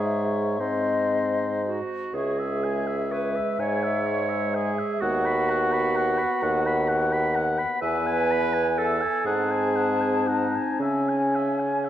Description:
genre	classical, slow romantic movement for wind quintet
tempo	42 BPM (dotted quarters)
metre	6/8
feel	uneven beats, rubato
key	C# minor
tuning	A4 = 440 Hz
part	mellow hollow silver concert flute	melody	0.0-11.9 s	D#5 to A5	-29 LUFS	left 5 dB	none
part	warm oboe	second line	0.0-11.9 s	B#4 to B5	-30 LUFS	left 2 dB	none
part	bright clarinet	accompaniment	0.0-11.9 s	C#4 to C#5	-28 LUFS	right 5 dB	none
part	dark French horn	accompaniment	0.0-11.9 s	G#3 to C#4	-33 LUFS	left 2 dB	none
part	warm bassoon	bass	0.0-11.9 s	C#2 to C#3	-27 LUFS	right 1 dB	none
room	wet concert hall reverb, RT60 2.2 s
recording	worn, warbling old tape, cassette tape, warbly pitch drift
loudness	-22 LUFS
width	side -11 dB against mid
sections	0.0-11.9 A section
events	none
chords	0.0 C#m/G#; 0.6 G#; 2.1 C#m; 5.0 B/D#; 7.8 E; 9.3 G#7b9; 10.8 C#m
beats	0.61 | 2.14 3.60 | 5.02 6.43 | 7.83 9.26 | 10.80

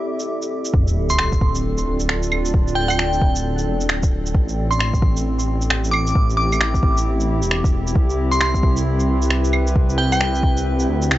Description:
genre	future garage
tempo	133 BPM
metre	4/4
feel	swing 61% on 16ths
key	D dorian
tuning	A4 = 440 Hz
part	warbly tape-like pad	sustained chords	0.0-11.2 s	C4 to E5	-24 LUFS	equal	chorus, built-in reverb, sidechain pumping
part	flickering grainy texture	texture	0.0-0.8 s	D5	-38 LUFS	right 2 dB	none
part	electronic shaker, finger snaps and claves	drums	0.2-11.2 s	none	-23 LUFS	right 1 dB	none
part	dark detuned saw bass	bass	0.7-11.2 s	D1 to D2	-21 LUFS	equal	tube saturation, sidechain pumping
part	electronic kick drum	drums	0.7-10.5 s	none	-18 LUFS	equal	none
part	sub drop	sound effects	0.7-2.5 s	none	-25 LUFS	equal	none
part	glassy synth bell	melody	1.1-10.6 s	G5 to D6	-25 LUFS	equal	chorus, phaser, analog delay
room	little or no reverb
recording	dry, gritty hardware recording, cassette tape, nothing above 7.8 kHz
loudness	-16 LUFS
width	side -15 dB against mid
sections	0.7-11.2 A section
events	impact 0.7-2.5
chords	0.0 Am7; 0.7 Dm7; 4.3 Am7; 8.0 Cmaj7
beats	0.29 | 0.74 1.19 1.64 2.09 | 2.54 3.00 3.45 3.90 | 4.35 4.80 5.25 5.70 | 6.15 6.60 7.05 7.51 | 7.96 8.41 8.86 9.31 | 9.76 10.21 10.66 11.12

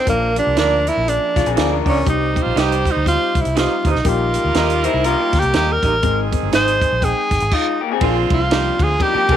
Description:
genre	uptempo 1960s-style soul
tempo	121 BPM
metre	4/4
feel	swing 59% on 8ths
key	Bb mixolydian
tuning	A4 = 438 Hz
part	warm tenor saxophone	melody	0.0-9.4 s	Bb3 to C5	-18 LUFS	right 1 dB	none
part	bright saxophone section	second line	0.1-9.4 s	D3 to C5	-26 LUFS	right 10 dB	none
part	dark upright piano	accompaniment	0.1-9.4 s	F3 to G5	-25 LUFS	left 10 dB	none
part	vintage muted fingered electric bass	bass	0.1-9.4 s	G1 to Eb2	-22 LUFS	equal	none
part	compact cocktail drum kit	drums	0.1-9.4 s	crash cymbal, hi-hat, kick drum, ride cymbal, snare drum	-21 LUFS	right 2 dB	none
part	electric guitar through a small old amp	stabs	0.6-6.7 s	D4 to Eb5	-25 LUFS	right 8 dB	none
part	electric guitar through a small old amp	riff	1.4-9.4 s	Ab3 to C5	-22 LUFS	left 11 dB	tremolo
room	light reverb, small room ambience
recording	1960s-style stereo with parts hard left and right, vinyl crackle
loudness	-15 LUFS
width	side -10 dB against mid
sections	0.0-8.0 A section; 8.0-9.4 B section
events	tenor saxophone solo 0.0-8.0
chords	0.1 Bb; 2.1 Cm; 4.1 Eb/Bb; 6.0 Ab; 8.0 Bbadd9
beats	| 0.08 0.58 1.08 1.57 | 2.07 2.57 3.06 3.56 | 4.06 4.55 5.05 5.54 | 6.04 6.53 7.03 7.52 | 8.01 8.51 9.00

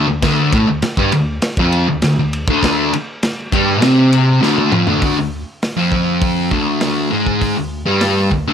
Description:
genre	garage rock duo or trio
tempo	100 BPM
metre	4/4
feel	straight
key	unclear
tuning	A4 = 440 Hz
part	fuzz guitar	riff	0.0-8.5 s	D2 to C4	-13 LUFS	equal	distortion
part	crunchy breakbeat drum kit	drums	0.2-8.5 s	hi-hat, kick drum, ride cymbal, snare drum, toms	-20 LUFS	equal	none
room	light reverb, studio reverb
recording	none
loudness	-13 LUFS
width	side -8 dB against mid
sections	0.0-5.0 A section; 5.0-8.5 B section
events	drum fill 4.4-5.0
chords	0.0 D5; 5.0 Ddim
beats	| 0.23 0.83 1.43 2.02 | 2.62 3.22 3.82 4.42 | 5.02 5.62 6.22 6.82 | 7.42 8.02

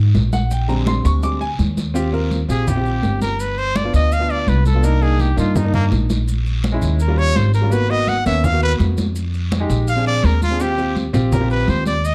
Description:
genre	Afro-Cuban jazz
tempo	166 BPM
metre	4/4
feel	straight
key	Eb major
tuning	A4 = 438 Hz
part	upright bass	bass	0.0-12.1 s	G1 to Ab2	-20 LUFS	equal	none
part	congas	percussion	0.1-12.1 s	none	-27 LUFS	equal	none
part	guiro	percussion	0.1-12.1 s	none	-38 LUFS	equal	none
part	maracas	percussion	0.1-12.1 s	none	-42 LUFS	equal	none
part	warm concert grand piano	accompaniment	0.3-11.9 s	D3 to D6	-25 LUFS	equal	none
part	clear trumpet	melody	2.5-12.1 s	Bb3 to Gb5	-24 LUFS	equal	slapback echo
room	light reverb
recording	dark, warm production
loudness	-18 LUFS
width	mono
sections	0.0-2.0 A section; 2.0-12.1 A section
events	grand piano solo 0.0-2.0; trumpet solo 2.0-12.1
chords	0.0 Absus2; 0.5 Bb13; 2.0 Eb69; 3.4 G7; 4.8 Cm9; 6.3 Bbm7b5; 7.0 Eb7; 7.7 Abm7; 9.2 Fm7; 9.9 Bb7; 10.6 Eb69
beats	0.15 | 0.51 0.87 1.23 1.59 | 1.95 2.31 2.67 3.03 | 3.40 3.76 4.12 4.48 | 4.84 5.20 5.56 5.92 | 6.28 6.64 7.00 7.36 | 7.72 8.08 8.44 8.80 | 9.16 9.52 9.88 10.24 | 10.60 10.96 11.32 11.68 | 12.04

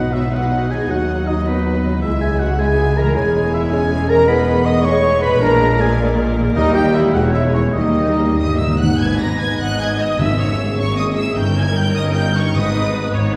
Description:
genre	classical, dramatic, fast romantic movement for symphony orchestra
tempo	96-108 BPM (dotted quarters)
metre	6/8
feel	rubato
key	G# minor from 4.3 s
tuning	A4 = 440 Hz
part	rich studio violin section	melody	0.0-13.1 s	C#5 to A#6	-31 LUFS	equal	none
part	clear symphonic violin section	second line	0.0-13.1 s	B4 to D#6	-31 LUFS	equal	none
part	mellow clarinet	second line	0.0-8.7 s	F#3 to E4	-27 LUFS	equal	none
part	warm oboe	second line	0.0-8.7 s	B4 to D#6	-28 LUFS	equal	none
part	rich studio viola section	accompaniment	0.0-13.4 s	G3 to E5	-28 LUFS	equal	none
part	mellow French horn section	sustained chords	0.0-13.4 s	A#3 to D#5	-23 LUFS	equal	none
part	concert harp	arpeggios	0.0-13.4 s	G2 to C#5	-29 LUFS	equal	none
part	clear symphonic double bass section	bass	0.0-13.4 s	E1 to D#2	-24 LUFS	equal	none
part	rich symphonic cello section	bass	0.0-13.4 s	C#2 to B2	-26 LUFS	equal	none
part	mellow flute section	second line	0.1-8.8 s	C#5 to E5	-34 LUFS	equal	none
part	dark bassoon	accompaniment	0.1-8.8 s	F#3 to G#3	-29 LUFS	equal	none
part	timpani	percussion	6.6-13.1 s	G#2 to D#3	-26 LUFS	equal	none
room	wet concert hall reverb, RT60 1.9 s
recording	heard from further back in the room, vinyl crackle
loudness	-17 LUFS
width	mono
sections	0.0-9.0 A section; 9.0-13.4 B section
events	timpani fill 7.8-9.0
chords	0.0 B; 0.9 B/D#; 2.0 C#m; 3.2 C#m/E; 4.3 Emaj7; 5.4 A#7; 6.6 D#; 7.2 C#m/E; 7.8 D#; 9.0 G#m; 10.2 A#m7b5/G#; 11.4 D#7/G; 12.6 G#m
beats	0.32 | 0.89 1.46 | 2.03 2.59 | 3.15 3.72 | 4.28 4.84 | 5.41 5.98 | 6.56 7.15 | 7.76 8.37 | 8.98 9.59 | 10.18 10.78 | 11.37 11.96 | 12.55 13.14

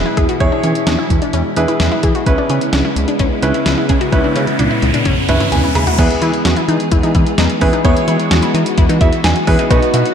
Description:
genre	synth-pop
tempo	129 BPM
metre	4/4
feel	straight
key	E major from 6.0 s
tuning	A4 = 436 Hz
part	clear concert grand piano	accompaniment	0.0-10.1 s	B3 to B5	-18 LUFS	right 2 dB	slapback echo
part	soft string machine	sustained chords	0.0-10.1 s	B2 to G#4	-19 LUFS	left 1 dB	ensemble chorus
part	fat analog bass	bass	0.0-10.0 s	B1 to E3	-18 LUFS	equal	none
part	wide unison pluck	arpeggios	0.1-10.1 s	B3 to G#4	-21 LUFS	left 2 dB	auto-pan, tape echo
part	clean 12-bit digital drum machine	drums	0.2-10.1 s	crash cymbal, hi-hat, kick drum, snare drum, toms	-17 LUFS	equal	none
part	riser	sound effects	3.4-6.0 s	none	-24 LUFS	right 2 dB	none
room	moderate concert hall reverb, RT60 2.4 s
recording	big arena sound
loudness	-12 LUFS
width	side -8 dB against mid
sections	0.0-6.0 A section; 6.0-10.1 B section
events	riser 3.4-6.0; drum fill 4.1-6.0; grand piano fill 5.1-6.0, 8.8-9.7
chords	0.0 E; 2.3 C#m7; 6.0 E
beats	| 0.40 0.87 1.33 1.80 | 2.27 2.73 3.19 3.66 | 4.12 4.59 5.06 5.52 | 5.99 6.45 6.92 7.38 | 7.85 8.31 8.78 9.24 | 9.71

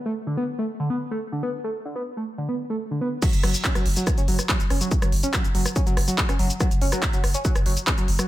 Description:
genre	driving peak-time techno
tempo	142 BPM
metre	4/4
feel	straight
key	F# minor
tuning	A4 = 440 Hz
part	overdriven synth lead	riff	0.1-8.3 s	D3 to C#4	-27 LUFS	equal	chorus, sidechain pumping, digital delay
part	electronic kick drum	drums	3.2-8.0 s	none	-23 LUFS	equal	none
part	techno drum kit	drums	3.2-8.3 s	crash cymbal, handclaps, hi-hat, rim click, shaker	-26 LUFS	left 1 dB	sidechain pumping on hats, low-pass filter on hats, sidechain pumping on cymbals, low-pass filter on cymbals, sidechain pumping on perc, low-pass filter on perc, low-pass filter on snare, low-pass filter on room
part	saturated sub bass	bass	3.3-8.2 s	F#1	-25 LUFS	equal	overdrive, sidechain pumping, low-pass filter
room	light reverb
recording	none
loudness	-21 LUFS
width	side -15 dB against mid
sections	0.0-3.2 A section; 3.2-8.3 B section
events	drop 3.2-8.3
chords	0.0 D5; 3.2 F#5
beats	0.27 0.69 1.11 | 1.53 1.96 2.38 2.80 | 3.22 3.65 4.07 4.49 | 4.91 5.33 5.76 6.18 | 6.60 7.03 7.45 7.87

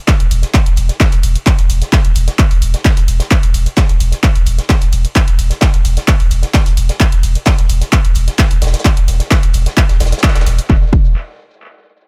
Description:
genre	driving peak-time techno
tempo	130 BPM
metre	4/4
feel	straight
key	unclear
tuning	A4 = 440 Hz
part	crunchy breakbeat drum kit	drums	0.1-10.7 s	hi-hat, shaker, snare drum	-30 LUFS	equal	high-pass filter on hats, high-pass filter on snare, high-pass filter on perc, high-pass filter on room, analog delay
part	electronic kick drum	drums	0.1-11.0 s	none	-14 LUFS	equal	overdrive
part	punchy analog drum machine	drums	0.1-10.7 s	handclaps, hi-hat, ride cymbal	-22 LUFS	equal	analog delay
part	warm sub bass	bass	0.2-11.1 s	E1	-16 LUFS	equal	overdrive, sidechain pumping, low-pass filter
room	little or no reverb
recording	echo-heavy mix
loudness	-13 LUFS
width	mono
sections	0.0-10.7 A section; 10.7-12.1 B section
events	drop 0.0-10.7; band accent 10.2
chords	none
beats	0.08 0.54 1.00 | 1.47 1.93 2.39 2.85 | 3.31 3.77 4.23 4.70 | 5.16 5.62 6.08 6.54 | 7.00 7.46 7.93 8.39 | 8.85 9.31 9.77 10.23 | 10.70

